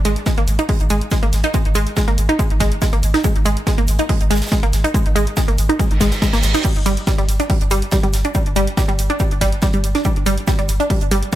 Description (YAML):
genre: driving peak-time techno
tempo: 141 BPM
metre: 4/4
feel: straight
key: unclear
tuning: A4 = 441 Hz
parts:
  - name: saturated sub bass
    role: bass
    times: 0.0-11.2 s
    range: G1 to Ab1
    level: -20 LUFS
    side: equal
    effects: tube saturation, sidechain pumping, low-pass filter
  - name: wide unison pluck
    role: riff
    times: 0.1-11.4 s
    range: G3 to Eb4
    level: -20 LUFS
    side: right 1 dB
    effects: sidechain pumping, dub echo
  - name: punchy analog drum machine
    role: drums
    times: 0.1-11.4 s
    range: crash cymbal, hi-hat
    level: -28 LUFS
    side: right 1 dB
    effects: overdrive, sidechain pumping on hats, sidechain pumping on cymbals
  - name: tight metal drum kit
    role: drums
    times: 0.1-11.4 s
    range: hi-hat, shaker, snare drum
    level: -30 LUFS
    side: right 2 dB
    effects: high-pass filter on hats, high-pass filter on snare, high-pass filter on perc, high-pass filter on room
  - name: electronic kick drum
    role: drums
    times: 0.3-11.4 s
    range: none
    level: -18 LUFS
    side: equal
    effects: none
  - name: reverse cymbal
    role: sound effects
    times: 5.9-6.6 s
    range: none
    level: -24 LUFS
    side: right 4 dB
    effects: none
room: light reverb, small room ambience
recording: none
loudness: -15 LUFS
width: side -13 dB against mid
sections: 0.0-11.4 A section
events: reverse cymbal 5.9-6.6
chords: 0.0 Ab5; 6.6 G5